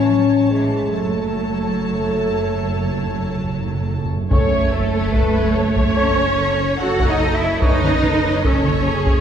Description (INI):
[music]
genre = cinematic, epic orchestral film score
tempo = 72 BPM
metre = 4/4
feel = straight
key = F# dorian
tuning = A4 = 440 Hz
[part]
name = warm symphonic violin section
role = melody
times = 0.0-9.2 s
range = A4 to A5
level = -30 LUFS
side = left 3 dB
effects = none
[part]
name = warm symphonic violin section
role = second line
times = 0.0-9.2 s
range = A4 to F#5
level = -27 LUFS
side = left 3 dB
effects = none
[part]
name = warm symphonic viola section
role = accompaniment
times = 0.0-9.2 s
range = G#4 to C#5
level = -26 LUFS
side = right 1 dB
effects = none
[part]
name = mellow French horn section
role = sustained chords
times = 0.0-7.9 s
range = G#3 to C#4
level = -21 LUFS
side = left 3 dB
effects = none
[part]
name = rich symphonic cello section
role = bass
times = 0.0-9.2 s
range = E3 to F#4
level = -22 LUFS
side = right 2 dB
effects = none
[part]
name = warm symphonic double bass section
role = bass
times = 0.0-9.2 s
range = F#1 to A1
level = -24 LUFS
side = right 3 dB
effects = none
[part]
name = timpani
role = percussion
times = 0.9-5.5 s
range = F#2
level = -26 LUFS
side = right 2 dB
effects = none
[part]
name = mellow trumpet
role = stabs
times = 4.3-7.9 s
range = C#5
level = -26 LUFS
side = equal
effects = none
[part]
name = taiko ensemble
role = drums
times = 4.3-9.2 s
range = none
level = -20 LUFS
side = equal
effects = none
[part]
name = sub drop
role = sound effects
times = 4.5-7.6 s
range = none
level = -30 LUFS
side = equal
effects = none
[sound]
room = wet scoring stage reverb, RT60 1.6 s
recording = heard from further back in the room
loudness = -16 LUFS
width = side -8 dB against mid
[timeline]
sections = 0.0-4.3 A section; 4.3-9.2 A section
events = timpani fill 0.9-4.3; impact 4.3-7.6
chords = 0.0 A; 0.9 F#m